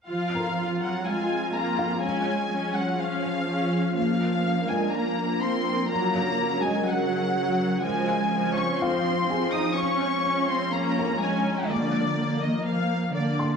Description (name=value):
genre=cinematic, hybrid orchestral and electronic film score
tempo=124 BPM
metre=4/4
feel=straight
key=F phrygian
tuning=A4 = 440 Hz
part: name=rich symphonic violin section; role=melody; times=0.1-13.6 s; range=D5 to Eb6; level=-28 LUFS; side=left 4 dB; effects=none
part: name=warm symphonic viola section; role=accompaniment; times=0.1-13.6 s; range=F3 to F4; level=-29 LUFS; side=equal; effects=none
part: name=warbly tape-like pad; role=sustained chords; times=0.5-13.6 s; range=Db3 to Db5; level=-29 LUFS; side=equal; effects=chorus, built-in reverb, phaser
part: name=warm symphonic cello section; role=bass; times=0.1-13.6 s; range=D3 to Eb4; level=-29 LUFS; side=right 3 dB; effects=none
part: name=felt-muted upright piano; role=texture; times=0.3-13.6 s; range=F4 to C6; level=-35 LUFS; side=left 1 dB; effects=none
room=wet scoring stage reverb, RT60 1.7 s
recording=dark, warm production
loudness=-23 LUFS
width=side -6 dB against mid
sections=0.1-13.6 A section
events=none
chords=0.1 Fm; 2.0 Db/F; 4.0 Bb/F; 5.9 Gb/Db; 7.8 Fm; 9.8 Db/F; 11.7 Bb/D